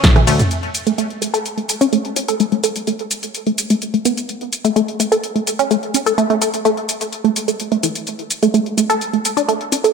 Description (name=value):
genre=progressive house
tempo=127 BPM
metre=4/4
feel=straight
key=unclear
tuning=A4 = 441 Hz
part: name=deep house drum kit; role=drums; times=0.0-9.9 s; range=hi-hat, ride cymbal, rim click, shaker, snare drum, toms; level=-20 LUFS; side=equal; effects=overdrive, sidechain pumping on hats, sidechain pumping on cymbals, sidechain pumping on perc, sidechain pumping on toms
part: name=tight sequenced synth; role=arpeggios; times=0.2-9.9 s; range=E3 to A4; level=-17 LUFS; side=right 1 dB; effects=chorus, sidechain pumping, dub echo
room=moderate recital hall reverb, RT60 1.4 s, digital ambience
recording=none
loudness=-16 LUFS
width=side -5 dB against mid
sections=0.5-9.9 A section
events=drum fill 0.0-0.5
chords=none